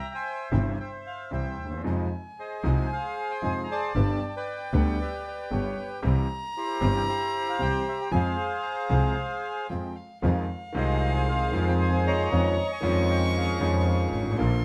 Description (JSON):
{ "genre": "tango", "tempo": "115 BPM", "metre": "4/4", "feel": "rubato", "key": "F minor", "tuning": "A4 = 445 Hz", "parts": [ { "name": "bandoneon", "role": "melody", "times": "0.0-14.4 s", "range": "E4 to Bb5", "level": "-33 LUFS", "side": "equal", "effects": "none" }, { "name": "bright grand piano", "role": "accompaniment", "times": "0.5-14.6 s", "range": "G1 to Ab4", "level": "-33 LUFS", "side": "equal", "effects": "none" }, { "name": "bandoneon", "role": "stabs", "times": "0.5-14.6 s", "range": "G3 to Ab4", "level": "-41 LUFS", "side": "equal", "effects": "none" }, { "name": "rich double bass", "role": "bass", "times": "0.5-14.6 s", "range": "G1 to F2", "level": "-28 LUFS", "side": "equal", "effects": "none" }, { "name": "dark violin", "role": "second line", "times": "1.9-14.6 s", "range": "F5 to Db6", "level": "-37 LUFS", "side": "equal", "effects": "none" } ], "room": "light reverb", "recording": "none", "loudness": "-27 LUFS", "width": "mono", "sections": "0.0-10.2 A section; 10.2-14.6 A section", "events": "none", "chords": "0.0 C; 1.8 Fm7; 4.0 G; 6.0 C; 8.1 Fm; 10.2 Fm7; 12.3 Dbadd9/F" }